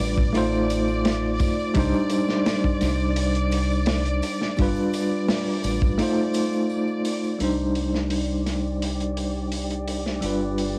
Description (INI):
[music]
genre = trip hop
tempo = 85 BPM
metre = 4/4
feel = straight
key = C dorian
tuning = A4 = 441 Hz
[part]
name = bell-like tine electric piano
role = accompaniment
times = 0.0-10.8 s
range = G3 to C5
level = -26 LUFS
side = equal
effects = tremolo, tape echo
[part]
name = rich studio string section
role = sustained chords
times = 0.0-10.8 s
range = D5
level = -35 LUFS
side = equal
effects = low-pass filter
[part]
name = deep dub fingered electric bass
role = bass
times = 0.0-10.8 s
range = G1 to C2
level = -30 LUFS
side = equal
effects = none
[part]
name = crunchy breakbeat drum kit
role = drums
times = 0.0-10.8 s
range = hi-hat, kick drum, snare drum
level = -30 LUFS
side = equal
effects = high-pass filter on kick, cassette tape, high-pass filter on hats, high-pass filter on snare, high-pass filter on room
[part]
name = tambourine and triangle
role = percussion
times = 0.2-7.4 s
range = none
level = -48 LUFS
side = equal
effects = none
[part]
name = wind-like tuned noise texture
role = texture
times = 8.3-10.8 s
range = G4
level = -43 LUFS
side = equal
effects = built-in reverb
[sound]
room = studio reverb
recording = home recording on cassette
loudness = -24 LUFS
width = mono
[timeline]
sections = 0.0-7.4 A section; 7.4-10.8 B section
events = filter sweep on string section 7.4-10.8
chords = 0.3 F7/A; 1.8 Cmadd9; 4.6 G7; 6.0 F7/A; 7.4 Cmadd9; 10.2 G7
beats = 0.34 1.05 | 1.76 2.46 3.17 3.87 | 4.58 5.29 5.99 6.70 | 7.40 8.11 8.81 9.52 | 10.23